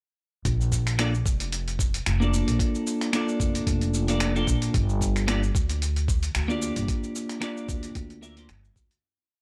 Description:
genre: sunset chillout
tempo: 112 BPM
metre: 4/4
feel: swing 55% on 16ths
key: Bb major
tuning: A4 = 440 Hz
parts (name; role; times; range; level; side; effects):
- upright bass; bass; 0.5-9.0 s; F1 to D2; -29 LUFS; equal; none
- dusty soul sampler-style drum kit; drums; 0.5-9.0 s; cabasa, finger snaps, hi-hat; -34 LUFS; equal; none
- electronic kick drum; drums; 0.5-8.9 s; none; -29 LUFS; equal; none
- twelve-string electric guitar; accompaniment; 1.0-8.5 s; Bb3 to G5; -30 LUFS; equal; analog delay
room: little or no reverb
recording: dry, gritty hardware recording, cassette tape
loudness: -26 LUFS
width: mono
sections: 0.5-9.0 groove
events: fade-out 6.2-9.0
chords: 0.5 Bbmaj7; 4.7 Gm7

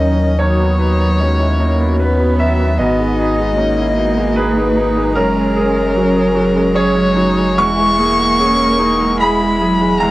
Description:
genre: neoclassical piano and strings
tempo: 75 BPM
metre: 3/4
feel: rubato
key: G# minor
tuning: A4 = 441 Hz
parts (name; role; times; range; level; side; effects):
- dark violin; melody; 0.0-10.1 s; A#4 to C#6; -18 LUFS; left 2 dB; cassette tape
- dark cello; second line; 0.0-10.1 s; F#3 to B3; -18 LUFS; right 2 dB; none
- bright grand piano; accompaniment; 0.0-10.1 s; D#2 to C#6; -19 LUFS; right 2 dB; none
- dark viola; accompaniment; 0.0-10.1 s; B3 to E4; -22 LUFS; right 1 dB; none
- hollow soft pad; sustained chords; 0.0-10.1 s; D#3 to A#4; -24 LUFS; left 2 dB; chorus
- saturated sub bass; bass; 0.0-10.1 s; E1 to D#2; -19 LUFS; equal; none
room: moderate booth ambience, RT60 0.2 s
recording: home recording on cassette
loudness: -12 LUFS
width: side -17 dB against mid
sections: 0.0-10.1 A section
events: none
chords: 0.4 B/D#; 2.8 G#m; 5.2 F#add9; 7.6 E

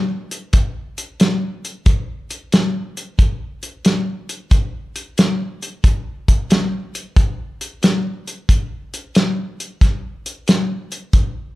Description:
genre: blues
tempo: 91 BPM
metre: 4/4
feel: swing 67% on 8ths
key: none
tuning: none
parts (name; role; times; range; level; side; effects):
- warm soul drum kit; drums; 0.3-11.3 s; hi-hat, kick drum, snare drum; -15 LUFS; equal; none
room: light reverb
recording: band playing live in one room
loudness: -16 LUFS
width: side -18 dB against mid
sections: 0.0-11.6 A section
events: none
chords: none

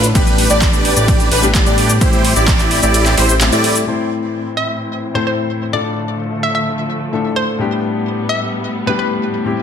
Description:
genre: EDM, festival progressive house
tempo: 129 BPM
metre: 4/4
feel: straight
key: unclear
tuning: A4 = 440 Hz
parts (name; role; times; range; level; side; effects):
- warm grand piano; accompaniment; 0.0-9.6 s; A2 to C5; -20 LUFS; left 4 dB; sidechain pumping, digital delay
- warm studio string section; sustained chords; 0.0-9.6 s; A2 to B4; -24 LUFS; left 1 dB; sidechain pumping, low-pass filter
- plucky unison lead; arpeggios; 0.0-3.8 s; B4 to D5; -21 LUFS; equal; ensemble chorus, sidechain pumping, digital delay
- dense compressed supersaw; riff; 0.0-3.8 s; D4 to D5; -18 LUFS; right 2 dB; sidechain pumping, low-pass filter, digital delay
- fat analog bass; bass; 0.0-3.9 s; A1 to A2; -17 LUFS; equal; tube saturation, sidechain pumping
- big-room dance drum kit; drums; 0.0-3.9 s; handclaps, hi-hat, ride cymbal, shaker; -17 LUFS; equal; overdrive, low-pass filter on hats, studio reverb, low-pass filter on cymbals, low-pass filter on perc, low-pass filter on snare
- electronic kick drum; drums; 0.2-2.6 s; none; -15 LUFS; equal; overdrive, studio reverb
- hollow square pluck; melody; 4.6-9.1 s; B4 to E5; -21 LUFS; equal; chorus, digital delay
room: moderate digital room reverb, RT60 1.1 s, digital ambience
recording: dense, heavily limited modern master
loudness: -13 LUFS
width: side -8 dB against mid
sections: 0.0-3.9 A section; 3.9-9.6 B section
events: drop 0.0-3.9; kick drops out 2.9-3.9; filter sweep on string section 3.9-9.6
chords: 0.2 G/A; 2.0 C/A; 3.9 Am; 5.7 Dm/A; 7.6 G/A

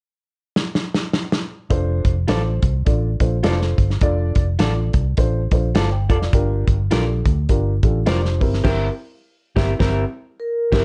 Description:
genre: uptempo 1960s-style soul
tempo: 104 BPM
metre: 4/4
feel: swing 59% on 8ths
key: F major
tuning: A4 = 440 Hz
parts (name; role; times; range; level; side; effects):
- warm soul drum kit; drums; 0.6-10.8 s; crash cymbal, hi-hat, kick drum, snare drum; -22 LUFS; equal; vintage 12-bit sampler grit
- dark upright piano; accompaniment; 1.7-10.8 s; C4 to A5; -28 LUFS; equal; none
- vintage muted fingered electric bass; bass; 1.7-10.8 s; F1 to D2; -22 LUFS; equal; none
- electric guitar through a small old amp; stabs; 2.3-10.8 s; F4 to E5; -28 LUFS; equal; none
- vibraphone with soft mallets; melody; 10.4-10.8 s; Bb4; -22 LUFS; equal; none
room: light reverb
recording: cassette tape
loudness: -19 LUFS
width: mono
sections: 0.0-1.7 A section; 1.7-10.8 B section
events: drum fill 0.6-1.7; band accent 8.6-10.8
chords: 0.0 N.C.; 1.7 F6; 8.4 C7/G

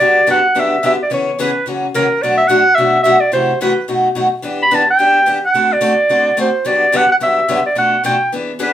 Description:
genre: jazz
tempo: 217 BPM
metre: 4/4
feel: swing 58% on 8ths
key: G major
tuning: A4 = 442 Hz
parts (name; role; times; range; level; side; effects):
- warm clarinet; melody; 0.0-8.7 s; A#4 to B5; -12 LUFS; right 1 dB; none
- picked steel-string acoustic guitar; accompaniment; 0.0-8.7 s; F#2 to A4; -17 LUFS; left 2 dB; none
room: wet studio ambience, RT60 0.5 s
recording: band playing live in one room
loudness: -11 LUFS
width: side -11 dB against mid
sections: 0.0-8.7 A section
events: none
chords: 0.0 Gmaj7; 1.1 C#m7; 1.7 F#7; 2.2 Bm7; 3.3 F#m7b5; 3.9 B7; 4.4 Em7; 5.5 D7; 6.6 Gmaj7; 7.8 Bm7b5

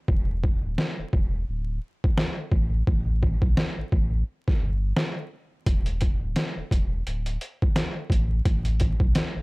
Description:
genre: hip hop, boom-bap hip-hop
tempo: 86 BPM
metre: 4/4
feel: swing 57% on 16ths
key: unclear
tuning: A4 = 439 Hz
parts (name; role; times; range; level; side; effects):
- warm sub bass; bass; 0.1-9.4 s; D1 to B1; -26 LUFS; equal; tube saturation
- trip hop sampler-style drum kit; drums; 0.1-9.3 s; hi-hat, kick drum, snare drum; -23 LUFS; equal; overdrive
room: little or no reverb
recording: dry, gritty hardware recording, vinyl crackle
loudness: -23 LUFS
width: side -26 dB against mid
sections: 0.0-9.4 A section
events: break 0.0-5.7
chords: none

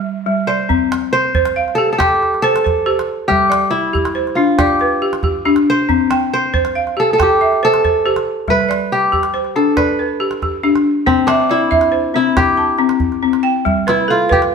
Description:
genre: west african traditional, West African string and xylophone music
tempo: 93 BPM (dotted quarters)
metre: 12/8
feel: straight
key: C major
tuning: A4 = 438 Hz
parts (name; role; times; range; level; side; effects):
- kora; melody; 0.0-14.5 s; C4 to C5; -16 LUFS; equal; none
- balafon; arpeggios; 0.0-14.5 s; G3 to A5; -16 LUFS; equal; none
- calabash; percussion; 0.7-14.5 s; none; -22 LUFS; right 2 dB; none
room: wet stone room reverb, RT60 1.0 s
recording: band playing live in one room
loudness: -13 LUFS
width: side -6 dB against mid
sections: 0.7-11.1 A section; 11.1-14.5 B section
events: kora solo 11.1-14.5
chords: 0.0 G; 0.7 C5; 3.3 G; 5.9 C; 8.5 G; 11.1 C; 13.7 G

